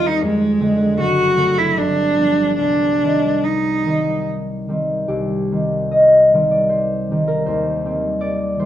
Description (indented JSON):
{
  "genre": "classical, romantic duo for cello and harp",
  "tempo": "69-81 BPM",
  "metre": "3/4",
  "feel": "rubato",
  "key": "C minor",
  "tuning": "A4 = 440 Hz",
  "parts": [
    { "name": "rich cello", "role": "melody", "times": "0.0-4.3 s", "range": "Ab3 to F#4", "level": "-16 LUFS", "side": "right 1 dB", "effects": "none" },
    { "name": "concert harp", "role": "accompaniment", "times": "0.0-8.7 s", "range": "F#1 to Eb5", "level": "-17 LUFS", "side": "equal", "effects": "none" }
  ],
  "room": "light reverb",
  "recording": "dark, warm production",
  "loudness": "-15 LUFS",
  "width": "side -11 dB against mid",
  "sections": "0.0-5.1 A section; 5.1-8.7 A section",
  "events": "none",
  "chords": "0.2 Dm7b5/F; 1.0 D7/F#; 1.8 G7; 2.6 Cm; 7.5 Cm/Eb"
}